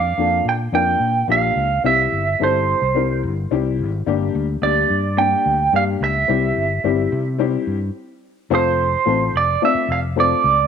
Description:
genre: uptempo 1960s-style soul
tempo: 108 BPM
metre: 4/4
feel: straight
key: F major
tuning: A4 = 440 Hz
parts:
  - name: electric guitar through a small old amp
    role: melody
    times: 0.0-10.7 s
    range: C5 to G5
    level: -18 LUFS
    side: right 6 dB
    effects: phaser
  - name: fingered electric bass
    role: bass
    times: 0.0-10.7 s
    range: F1 to C3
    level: -23 LUFS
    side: left 1 dB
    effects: none
  - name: dark upright piano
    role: accompaniment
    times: 0.2-10.5 s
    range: G3 to D5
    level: -22 LUFS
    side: left 11 dB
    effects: none
room: moderate echo chamber reverb, RT60 1.5 s, studio reverb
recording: 1960s-style stereo with parts hard left and right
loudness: -16 LUFS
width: side -7 dB against mid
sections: 0.0-8.5 A section; 8.5-10.7 B section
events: stop 8.0-8.5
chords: 0.0 Bb; 1.8 C; 4.1 Gm; 6.3 C; 8.5 F

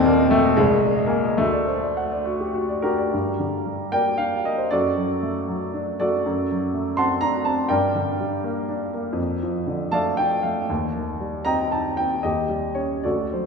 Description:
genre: classical, romantic character piece for solo piano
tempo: 68-84 BPM (dotted quarters)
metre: 6/8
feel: rubato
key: G minor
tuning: A4 = 440 Hz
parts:
  - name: warm baby grand piano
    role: solo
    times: 0.0-13.5 s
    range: Eb1 to C6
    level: -20 LUFS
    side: equal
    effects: none
room: wet concert hall reverb, RT60 2.2 s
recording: recorded in a church or concert hall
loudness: -20 LUFS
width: side -4 dB against mid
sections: 0.0-3.1 A section; 3.1-13.5 B section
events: none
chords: 0.0 Eb; 0.6 Ab/C; 1.4 D; 3.1 Gm; 4.7 D/F#; 6.2 D7/F#; 7.7 Gm; 9.2 Dm/F; 10.7 Cm/Eb; 12.2 Eb7

